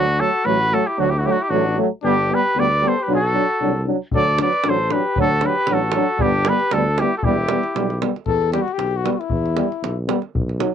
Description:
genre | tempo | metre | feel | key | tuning
balkan folk, Balkan brass band | 115 BPM | 2/4 | swing 55% on 16ths | unclear | A4 = 440 Hz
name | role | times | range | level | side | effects
warm trumpet | melody | 0.0-8.0 s | F#4 to D5 | -20 LUFS | right 1 dB | cassette tape
warm flugelhorn | second line | 0.0-10.0 s | D4 to B4 | -26 LUFS | left 10 dB | none
clear euphonium | accompaniment | 0.0-10.7 s | F#3 to G3 | -23 LUFS | right 10 dB | none
warm French horn | accompaniment | 0.0-10.7 s | A3 to D#4 | -24 LUFS | left 12 dB | none
mellow tuba | bass | 0.0-10.6 s | E1 to E2 | -24 LUFS | equal | none
davul | percussion | 4.1-10.7 s | none | -25 LUFS | right 1 dB | none
room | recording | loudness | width
moderate booth ambience, RT60 0.2 s | home recording on cassette | -17 LUFS | side -8 dB against mid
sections
0.0-8.3 A section; 8.3-10.7 B section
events
flugelhorn solo 8.3-10.7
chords
0.0 D; 2.0 G; 3.1 Bm; 4.1 D; 6.2 G; 7.2 Em

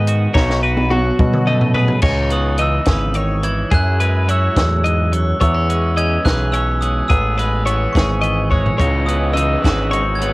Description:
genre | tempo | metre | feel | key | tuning
math rock and midwest emo | 71 BPM (dotted quarters) | 6/8 | straight | unclear | A4 = 440 Hz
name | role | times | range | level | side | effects
twelve-string electric guitar | accompaniment | 0.0-10.3 s | E2 to G#4 | -23 LUFS | right 3 dB | spring reverb, cassette tape
twelve-string electric guitar | arpeggios | 0.0-10.3 s | F#4 to D#5 | -22 LUFS | left 3 dB | cassette tape
growling picked electric bass | bass | 0.0-10.3 s | G#1 to B2 | -18 LUFS | equal | overdrive
compact cocktail drum kit | drums | 0.1-10.3 s | crash cymbal, hi-hat, kick drum, snare drum, toms | -18 LUFS | equal | cassette tape
glockenspiel with hard plastic mallets | melody | 2.3-10.3 s | C#6 to G#6 | -22 LUFS | right 1 dB | cassette tape
raw garage guitar | riff | 8.8-10.3 s | C#3 to C#4 | -24 LUFS | equal | overdrive, cassette tape
room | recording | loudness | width
little or no reverb | home recording on cassette | -14 LUFS | side -21 dB against mid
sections
0.0-2.0 A section; 2.0-10.3 B section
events
drum fill 0.3-2.0, 8.5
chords
0.3 B7; 2.0 C#m9; 3.7 F#m9; 5.4 E6; 7.1 Amaj9; 8.8 C#m11

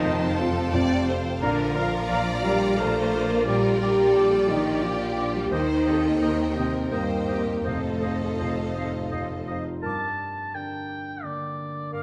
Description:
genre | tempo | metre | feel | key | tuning
cinematic, emotional film score for orchestra | 87 BPM | 3/4 | rubato | G minor | A4 = 440 Hz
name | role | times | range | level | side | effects
rich studio violin section | melody | 0.0-9.4 s | G4 to D5 | -36 LUFS | equal | none
warm studio violin section | second line | 0.0-9.6 s | D5 to Bb5 | -37 LUFS | equal | none
rich studio viola section | accompaniment | 0.0-9.6 s | Bb3 to G5 | -38 LUFS | equal | none
warm concert grand piano | accompaniment | 0.0-12.0 s | F1 to C5 | -33 LUFS | equal | none
mellow French horn section | sustained chords | 0.0-9.1 s | A3 to Bb4 | -27 LUFS | equal | none
concert harp | arpeggios | 0.0-12.0 s | G2 to D6 | -39 LUFS | equal | none
warm studio cello section | bass | 0.0-9.1 s | A2 to Bb3 | -34 LUFS | equal | none
warm studio double bass section | bass | 0.0-9.6 s | Bb1 to G2 | -35 LUFS | equal | none
dark clarinet | second line | 1.4-12.0 s | Bb4 to D5 | -41 LUFS | equal | none
small flute group | second line | 1.4-12.0 s | F5 to D6 | -41 LUFS | equal | none
warm oboe | second line | 1.4-12.0 s | D5 to A5 | -37 LUFS | equal | none
room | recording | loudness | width
moderate scoring stage reverb, RT60 2.0 s | none | -25 LUFS | mono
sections
0.0-9.8 A section; 9.8-12.0 B section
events
none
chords
0.0 F7; 1.4 Bb; 3.5 Gm/Bb; 5.5 Eb6; 7.7 F7; 9.8 Gmadd9

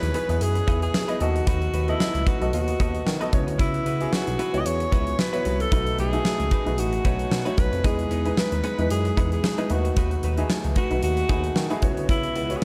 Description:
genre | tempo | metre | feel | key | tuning
1980s-style pop | 113 BPM | 4/4 | swing 55% on 16ths | unclear | A4 = 442 Hz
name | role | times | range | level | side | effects
clear alto saxophone | melody | 0.0-12.6 s | E4 to D#5 | -30 LUFS | equal | none
clear concert grand piano | accompaniment | 0.0-12.6 s | B2 to E5 | -31 LUFS | equal | none
direct-recorded clean electric guitar | riff | 0.0-12.6 s | A3 to B4 | -38 LUFS | equal | lush chorus, delay
smooth synth bass | bass | 0.0-12.6 s | A1 to D#3 | -29 LUFS | equal | none
huge arena drum kit | drums | 0.0-12.6 s | hi-hat, kick drum, snare drum | -28 LUFS | equal | none
room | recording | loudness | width
light reverb, studio reverb | dark, warm production | -24 LUFS | mono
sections
0.0-12.6 A section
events
none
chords
0.0 Emaj7; 1.2 B7; 3.3 F#7sus4; 5.7 B7; 7.8 Emaj7; 9.7 B7; 11.8 F#7sus4

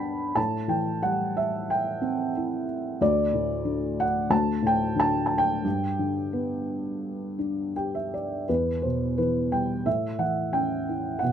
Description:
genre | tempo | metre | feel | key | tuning
classical, lyrical solo piano | 80-94 BPM | 4/4 | rubato | G major | A4 = 440 Hz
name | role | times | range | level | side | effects
felt-muted upright piano | solo | 0.0-11.3 s | D2 to B5 | -24 LUFS | equal | none
room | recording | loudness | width
light reverb | close, detailed microphones | -24 LUFS | side -9 dB against mid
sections
0.0-8.5 A section; 8.5-11.3 B section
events
felt piano fill 7.4-8.5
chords
0.4 Am7; 3.0 D5; 5.7 G; 8.5 Em; 9.9 A

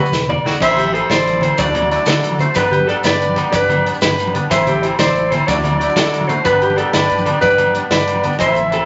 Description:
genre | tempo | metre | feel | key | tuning
highlife guitar band | 123 BPM (dotted quarters) | 12/8 | straight | G major | A4 = 441 Hz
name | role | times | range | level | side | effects
twangy electric guitar | accompaniment | 0.0-8.8 s | E3 to F#4 | -29 LUFS | equal | none
electric guitar through a small old amp | arpeggios | 0.0-8.9 s | G4 to D5 | -22 LUFS | equal | none
fingered electric bass | bass | 0.1-8.8 s | E1 to D3 | -27 LUFS | equal | none
crunchy breakbeat drum kit | drums | 0.1-8.8 s | crash cymbal, hi-hat, kick drum, snare drum, toms | -24 LUFS | equal | none
congas | percussion | 0.1-8.7 s | none | -25 LUFS | equal | none
maracas | percussion | 0.1-8.5 s | none | -33 LUFS | equal | none
agogo bells | percussion | 0.3-8.9 s | none | -28 LUFS | equal | none
clear clarinet | melody | 0.6-8.9 s | B4 to E5 | -20 LUFS | equal | none
musette accordion | sustained chords | 0.6-8.9 s | B3 to A4 | -28 LUFS | equal | none
room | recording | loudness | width
wet large studio reverb, RT60 0.9 s | nothing above 7.7 kHz | -15 LUFS | mono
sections
0.6-8.9 A section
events
drum fill 0.0-0.6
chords
0.0 Emadd9; 0.6 Am; 1.6 Dadd9; 2.6 G; 4.5 Am; 5.5 Dadd9; 6.5 G

